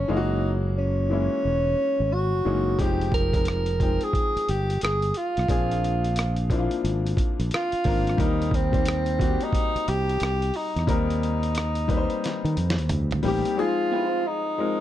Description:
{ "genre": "R&B, neo-soul", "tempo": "89 BPM", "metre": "4/4", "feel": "swing 62% on 16ths", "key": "Eb major", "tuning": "A4 = 440 Hz", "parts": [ { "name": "mellow tenor saxophone", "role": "melody", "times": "0.0-14.8 s", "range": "C4 to Bb4", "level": "-26 LUFS", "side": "equal", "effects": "plate reverb" }, { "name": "clear grand piano", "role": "accompaniment", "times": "0.0-14.8 s", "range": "D3 to G5", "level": "-29 LUFS", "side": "left 4 dB", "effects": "plate reverb" }, { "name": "fingered electric bass", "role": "bass", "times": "0.0-13.4 s", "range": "Fb1 to Eb3", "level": "-26 LUFS", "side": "equal", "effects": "none" }, { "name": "dusty soul sampler-style drum kit", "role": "drums", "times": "2.8-13.6 s", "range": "hi-hat, kick drum, rim click, snare drum, toms", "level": "-27 LUFS", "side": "equal", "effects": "none" }, { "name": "electric guitar through a small old amp", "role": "second line", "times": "13.9-14.2 s", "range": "C4 to C5", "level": "-32 LUFS", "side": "right 9 dB", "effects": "spring reverb, plate reverb" } ], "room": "light reverb", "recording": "dark, warm production", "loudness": "-22 LUFS", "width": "side -12 dB against mid", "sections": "0.0-13.6 A section; 13.6-14.8 B section", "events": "drum fill 12.2-13.6", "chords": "0.1 Gb9; 2.8 Fm9; 5.5 Bb9; 8.2 Eb6; 13.6 Ab6", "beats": "| 0.09 0.77 1.44 2.11 | 2.79 3.46 4.14 4.81 | 5.48 6.16 6.83 7.51 | 8.18 8.86 9.53 10.20 | 10.88 11.55 12.23 12.90 | 13.57 14.25" }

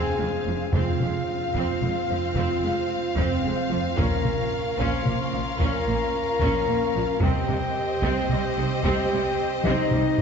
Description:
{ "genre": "cinematic, epic orchestral film score", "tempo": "74 BPM (dotted quarters)", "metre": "12/8", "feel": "straight", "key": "Bb minor", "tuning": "A4 = 441 Hz", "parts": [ { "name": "warm symphonic violin section", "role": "melody", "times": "0.0-10.2 s", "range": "Eb5 to F5", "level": "-35 LUFS", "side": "left 4 dB", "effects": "none" }, { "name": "bright symphonic violin section", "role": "second line", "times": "0.0-10.2 s", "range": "C5 to F5", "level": "-37 LUFS", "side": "left 2 dB", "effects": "none" }, { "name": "concert flute", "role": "second line", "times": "0.0-10.2 s", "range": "C5 to C6", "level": "-33 LUFS", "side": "left 1 dB", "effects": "none" }, { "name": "clear symphonic viola section", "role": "accompaniment", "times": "0.0-10.0 s", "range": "Eb3 to Db4", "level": "-32 LUFS", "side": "right 1 dB", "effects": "none" }, { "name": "clear symphonic string section", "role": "sustained chords", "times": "0.0-10.2 s", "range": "C4 to F5", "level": "-33 LUFS", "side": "left 2 dB", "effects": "none" }, { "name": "dark French horn section", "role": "sustained chords", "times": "0.0-10.2 s", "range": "C4 to C5", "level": "-28 LUFS", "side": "left 1 dB", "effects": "none" }, { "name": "rich symphonic cello section", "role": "bass", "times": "0.2-10.0 s", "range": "F2 to C3", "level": "-32 LUFS", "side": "right 3 dB", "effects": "none" }, { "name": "rich symphonic double bass section", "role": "bass", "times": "0.2-10.2 s", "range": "F1 to C2", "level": "-30 LUFS", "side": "right 3 dB", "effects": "none" }, { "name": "taiko ensemble", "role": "drums", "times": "0.7-10.2 s", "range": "none", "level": "-29 LUFS", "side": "equal", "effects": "none" }, { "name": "timpani", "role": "percussion", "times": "4.0-4.7 s", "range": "Bb2", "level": "-35 LUFS", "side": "left 2 dB", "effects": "none" } ], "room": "wet concert hall reverb, RT60 2.5 s", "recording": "dark, warm production, nothing above 7.8 kHz", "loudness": "-22 LUFS", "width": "side -6 dB against mid", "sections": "0.0-10.2 A section", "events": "drum fill 9.7-10.2", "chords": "0.0 Fm; 4.0 Bbm; 7.2 Cm", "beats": "| 0.74 1.55 2.36 3.17 | 3.98 4.79 5.60 6.41 | 7.22 8.03 8.84 9.65" }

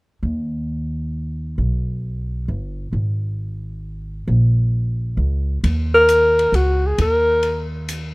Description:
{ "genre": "jazz, small-group swing and bop", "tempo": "133 BPM", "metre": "3/4", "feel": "swing 66% on 8ths", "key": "unclear", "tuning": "A4 = 440 Hz", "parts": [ { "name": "upright bass", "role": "bass", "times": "0.2-8.1 s", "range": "G1 to Eb2", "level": "-20 LUFS", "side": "equal", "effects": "none" }, { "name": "open jazz drum kit", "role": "drums", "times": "5.6-8.0 s", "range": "hi-hat, kick drum, ride cymbal", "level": "-31 LUFS", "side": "left 1 dB", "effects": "none" }, { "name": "mellow alto saxophone", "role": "melody", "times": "5.9-7.7 s", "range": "Gb4 to Bb4", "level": "-14 LUFS", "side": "left 1 dB", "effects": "none" } ], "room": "small room ambience", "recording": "rough home demo mix", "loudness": "-17 LUFS", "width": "side -26 dB against mid", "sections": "0.2-5.6 A section; 5.6-8.1 B section", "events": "none", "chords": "0.2 N.C.; 1.6 G; 2.9 N.C.; 4.3 Bbm; 5.6 Eb5", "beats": "| 0.23 0.69 1.14 | 1.58 2.04 2.48 | 2.94 3.38 3.83 | 4.29 4.74 5.18 | 5.63 6.08 6.54 | 6.99 7.44 7.89" }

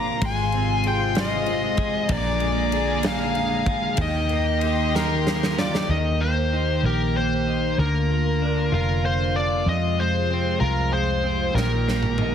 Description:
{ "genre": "six-eight pop ballad", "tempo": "64 BPM (dotted quarters)", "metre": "6/8", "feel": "straight", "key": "Eb major", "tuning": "A4 = 440 Hz", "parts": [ { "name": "bluesy overdriven lead guitar", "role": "melody", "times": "0.0-12.3 s", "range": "Bb4 to Bb5", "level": "-25 LUFS", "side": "left 3 dB", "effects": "distortion" }, { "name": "warm studio violin section", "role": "second line", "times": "0.0-5.9 s", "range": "G5 to D6", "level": "-33 LUFS", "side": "left 2 dB", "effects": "none" }, { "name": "direct-recorded clean electric guitar", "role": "accompaniment", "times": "0.0-12.3 s", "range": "F2 to Ab4", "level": "-27 LUFS", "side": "right 1 dB", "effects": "double-tracked left and right" }, { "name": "clear studio string section", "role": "sustained chords", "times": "0.0-12.3 s", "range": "C3 to Ab4", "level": "-29 LUFS", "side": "equal", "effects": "none" }, { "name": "vintage muted fingered electric bass", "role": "bass", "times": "0.0-12.3 s", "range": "F1 to F2", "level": "-25 LUFS", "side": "equal", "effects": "none" }, { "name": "huge arena drum kit", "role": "drums", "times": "0.2-5.9, 11.6-12.3 s", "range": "kick drum, ride cymbal, snare drum, toms", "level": "-28 LUFS", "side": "right 1 dB", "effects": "none" } ], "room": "light reverb, studio reverb", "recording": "heavily compressed radio sound, multiband compression", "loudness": "-20 LUFS", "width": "side -8 dB against mid", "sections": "0.0-5.9 A section; 5.9-12.3 B section", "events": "drum fill 4.9-5.9, 11.5-12.3", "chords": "0.2 Fm/Ab; 2.1 Bb7; 4.0 Eb; 7.8 Bb/D; 9.7 Fm; 11.5 Eb/Bb", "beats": "| 0.22 1.16 | 2.10 3.04 | 3.98 4.93 | 5.88 6.83 | 7.78 8.72 | 9.66 10.61 | 11.55" }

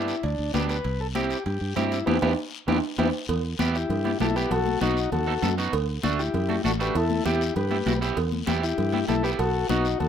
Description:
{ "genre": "latin, cumbia", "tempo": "197 BPM", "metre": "4/4", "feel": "straight", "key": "E minor", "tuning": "A4 = 442 Hz", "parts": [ { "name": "combo organ", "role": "melody", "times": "0.0-10.1 s", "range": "D4 to B4", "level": "-27 LUFS", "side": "left 4 dB", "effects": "none" }, { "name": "electric guitar at the edge of break-up", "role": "accompaniment", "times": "0.0-9.9 s", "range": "A3 to A4", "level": "-29 LUFS", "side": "right 6 dB", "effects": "none" }, { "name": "fingered electric bass", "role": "bass", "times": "0.0-10.1 s", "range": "A1 to G2", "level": "-28 LUFS", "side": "right 1 dB", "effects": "none" }, { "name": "guiro", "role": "percussion", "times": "0.1-10.1 s", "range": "none", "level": "-38 LUFS", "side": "left 8 dB", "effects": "none" }, { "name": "timbales and cowbell", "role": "percussion", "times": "0.1-10.1 s", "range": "none", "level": "-32 LUFS", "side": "right 8 dB", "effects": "none" }, { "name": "congas", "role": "percussion", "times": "0.2-10.1 s", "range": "none", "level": "-31 LUFS", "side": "left 9 dB", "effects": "none" } ], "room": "moderate small room reverb, RT60 0.5 s", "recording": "rough home demo mix", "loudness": "-23 LUFS", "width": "side -8 dB against mid", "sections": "0.0-3.3 A section; 3.3-10.1 B section", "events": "band accent 2.1-3.3; drum fill 2.7-3.3", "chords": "0.0 G; 0.8 C; 2.1 Em; 4.5 B7; 5.7 D; 7.0 Em; 9.4 B7", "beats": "0.24 0.54 | 0.85 1.15 1.46 1.76 | 2.07 2.38 2.68 2.99 | 3.29 3.60 3.90 4.21 | 4.51 4.82 5.12 5.43 | 5.73 6.04 6.34 6.65 | 6.95 7.26 7.56 7.87 | 8.17 8.47 8.78 9.09 | 9.39 9.70 10.00" }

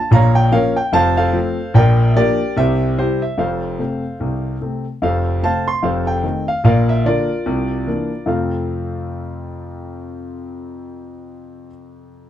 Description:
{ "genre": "jazz, stride piano", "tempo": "147 BPM", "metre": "4/4", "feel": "swing 59% on 8ths", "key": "F major", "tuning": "A4 = 440 Hz", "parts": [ { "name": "warm concert grand piano", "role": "solo", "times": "0.0-12.3 s", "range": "F1 to C6", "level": "-16 LUFS", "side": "equal", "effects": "none" } ], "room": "light reverb", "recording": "dark, warm production", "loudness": "-15 LUFS", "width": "side -11 dB against mid", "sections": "0.0-5.0 A section; 5.0-8.3 B section; 8.3-11.5 C section", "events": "none", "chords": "0.1 Bbm; 0.9 F; 1.8 Bb6; 2.6 C; 3.4 F; 5.8 F7; 6.6 Bb; 7.5 C9; 8.3 F", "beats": "| 0.12 0.53 0.94 1.34 | 1.75 2.16 2.56 2.97 | 3.38 3.79 4.20 4.60 | 5.01 5.42 5.83 6.23 | 6.64 7.05 7.46 7.87 | 8.28 8.68 9.09 9.50 | 9.91 10.32 10.72 11.13" }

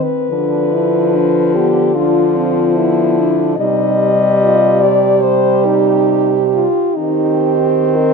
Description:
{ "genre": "classical, lyrical piece for horn quartet", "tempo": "59-75 BPM", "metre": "4/4", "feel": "rubato", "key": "C minor", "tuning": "A4 = 438 Hz", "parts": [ { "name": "mellow French horn", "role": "melody", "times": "0.0-8.1 s", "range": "Eb4 to Eb5", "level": "-15 LUFS", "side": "left 7 dB", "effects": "none" }, { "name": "mellow French horn", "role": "second line", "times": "0.0-8.1 s", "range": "B3 to G4", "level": "-17 LUFS", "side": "right 14 dB", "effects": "none" }, { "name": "warm French horn", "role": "accompaniment", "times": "0.0-8.1 s", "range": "F3 to C4", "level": "-17 LUFS", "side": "left 2 dB", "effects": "none" }, { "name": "warm French horn", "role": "bass", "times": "0.3-8.1 s", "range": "C3 to Eb3", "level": "-20 LUFS", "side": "right 3 dB", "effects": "none" } ], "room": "light reverb", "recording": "close, detailed microphones", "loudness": "-11 LUFS", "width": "side -5 dB against mid", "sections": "0.0-8.1 A section", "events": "none", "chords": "0.3 Bdim/D; 3.6 Cm; 7.0 Cm/Eb", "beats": "| 0.31 1.14 1.96 2.77 | 3.59 4.43 5.26 6.11 | 6.99 7.96" }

